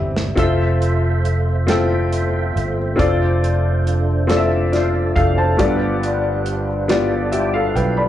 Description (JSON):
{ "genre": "slow gospel", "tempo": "46 BPM (dotted quarters)", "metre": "6/8", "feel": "straight", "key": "F major", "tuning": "A4 = 440 Hz", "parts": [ { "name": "clear upright piano", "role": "accompaniment", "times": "0.0-8.1 s", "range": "G2 to B5", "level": "-19 LUFS", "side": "left 2 dB", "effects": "slapback echo" }, { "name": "mellow French horn section", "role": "sustained chords", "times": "0.0-8.1 s", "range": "E3 to E5", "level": "-30 LUFS", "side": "equal", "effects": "none" }, { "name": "fingered electric bass", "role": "bass", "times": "0.0-8.1 s", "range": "F1 to B1", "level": "-20 LUFS", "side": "right 1 dB", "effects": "none" }, { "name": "warm soul drum kit", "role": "drums", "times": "0.2-8.0 s", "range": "hi-hat, kick drum, snare drum", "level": "-24 LUFS", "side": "right 1 dB", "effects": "none" }, { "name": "percussive tonewheel organ", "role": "sustained chords", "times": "0.4-8.1 s", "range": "G3 to G5", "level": "-26 LUFS", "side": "right 4 dB", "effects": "fast rotary speaker, overdrive, chorus vibrato" } ], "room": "light reverb", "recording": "live gig heard through the venue's PA, club reverb, nothing above 11.0 kHz", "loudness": "-16 LUFS", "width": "side -12 dB against mid", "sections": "0.0-8.1 A section", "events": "drum fill 0.0-0.4", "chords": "0.4 Fmaj7; 3.0 Dm7/F; 5.6 G7" }